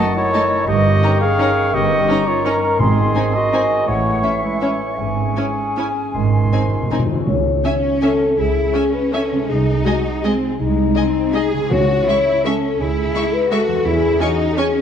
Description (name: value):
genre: classical, orchestral ballroom waltz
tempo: 148-184 BPM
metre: 3/4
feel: rubato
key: C# minor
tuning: A4 = 441 Hz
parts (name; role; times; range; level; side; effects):
- warm chamber violin section; melody; 0.0-14.7 s; E5 to C#6; -32 LUFS; left 4 dB; none
- clear oboe; second line; 0.0-7.1 s; A5 to C#6; -28 LUFS; left 1 dB; none
- hollow concert flute; second line; 0.0-7.1 s; C#5 to B#5; -26 LUFS; left 2 dB; none
- mellow clarinet; second line; 0.0-7.1 s; G#3 to G#4; -26 LUFS; left 2 dB; none
- warm symphonic violin section; second line; 0.0-14.7 s; C#4 to G#5; -29 LUFS; left 3 dB; none
- mellow bassoon; accompaniment; 0.0-7.1 s; D#3 to E3; -25 LUFS; right 2 dB; none
- warm symphonic viola section; accompaniment; 0.0-14.7 s; G#3 to C#4; -26 LUFS; right 1 dB; none
- mellow French horn section; sustained chords; 0.0-14.8 s; A3 to C#5; -20 LUFS; left 4 dB; none
- concert harp; arpeggios; 0.0-14.8 s; E2 to D#5; -26 LUFS; left 7 dB; none
- warm trumpet; stabs; 0.0-7.1 s; E4 to E#5; -21 LUFS; right 2 dB; none
- warm symphonic cello section; bass; 0.7-14.8 s; G2 to G#4; -23 LUFS; right 2 dB; none
- warm symphonic double bass section; bass; 0.7-14.1 s; G1 to E2; -22 LUFS; right 4 dB; none
- timpani; percussion; 2.8-3.3, 6.1-7.8, 11.7-12.2 s; G#2 to C#3; -23 LUFS; equal; none
room: wet scoring stage reverb, RT60 1.6 s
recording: dark, warm production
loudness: -15 LUFS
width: side -8 dB against mid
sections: 0.0-7.3 A section; 7.3-14.8 B section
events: timpani fill 6.1-7.3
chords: 0.0 D#dim/F#; 0.7 D#7/G; 2.8 G#; 3.9 A; 5.0 C#m/G#; 6.1 G#; 7.3 C#m; 9.5 G#/B#; 11.7 C#m; 13.9 C#m/E